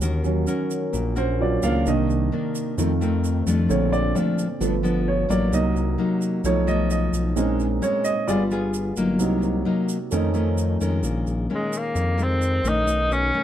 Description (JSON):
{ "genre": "bossa nova", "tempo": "131 BPM", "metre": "4/4", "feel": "straight", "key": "Bb minor", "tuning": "A4 = 440 Hz", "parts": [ { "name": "nylon-string guitar", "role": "accompaniment", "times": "0.0-13.4 s", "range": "F2 to Bb4", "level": "-25 LUFS", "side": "left 3 dB", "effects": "none" }, { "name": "warm concert grand piano", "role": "accompaniment", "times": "0.0-11.1 s", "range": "D3 to F5", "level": "-24 LUFS", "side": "right 4 dB", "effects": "none" }, { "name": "smooth synth bass", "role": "bass", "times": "0.0-13.3 s", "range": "G1 to F2", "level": "-24 LUFS", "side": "equal", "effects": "none" }, { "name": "tube shaker", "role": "percussion", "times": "0.0-13.3 s", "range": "none", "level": "-38 LUFS", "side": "right 6 dB", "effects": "none" }, { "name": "warm tenor saxophone", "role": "melody", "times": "11.5-13.4 s", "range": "Ab3 to Eb4", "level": "-22 LUFS", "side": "left 1 dB", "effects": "plate reverb" } ], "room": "light reverb", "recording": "dark, warm production", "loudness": "-20 LUFS", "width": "side -11 dB against mid", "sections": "0.0-11.0 A section; 11.0-13.4 B section", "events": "grand piano solo 0.0-11.0", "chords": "0.0 Ebm7; 1.9 Cm9; 2.8 F7; 3.7 Bbmaj7; 4.6 G7; 5.5 Cm7b5; 6.4 B7#11; 7.4 Bbm11; 8.3 G7b9; 9.2 Cm7b5; 10.1 F7b13; 11.0 Bbm11; 12.9 B9" }